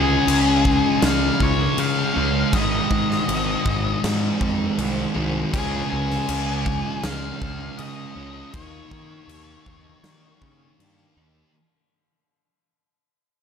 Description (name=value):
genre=rock, shoegaze and dream pop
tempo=80 BPM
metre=4/4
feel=straight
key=unclear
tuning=A4 = 440 Hz
part: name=octave-fuzz lead guitar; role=melody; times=0.0-10.7 s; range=Ab4 to F5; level=-27 LUFS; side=left 4 dB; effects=distortion, analog delay
part: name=thick fuzz guitar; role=riff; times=0.0-11.5 s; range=Ab2 to Eb4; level=-22 LUFS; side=right 1 dB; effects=distortion, lush chorus
part: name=fuzz picked electric bass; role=bass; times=0.0-11.4 s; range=Ab1 to Eb3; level=-27 LUFS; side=equal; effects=overdrive
part: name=huge arena drum kit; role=drums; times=0.3-11.0 s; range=crash cymbal, kick drum, snare drum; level=-26 LUFS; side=equal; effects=none
room=light reverb, studio reverb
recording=none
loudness=-19 LUFS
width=side -7 dB against mid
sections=0.0-11.5 A section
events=fade-out 0.0-11.5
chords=0.0 Db; 2.5 Ab; 5.5 Db; 8.5 Eb7(no3)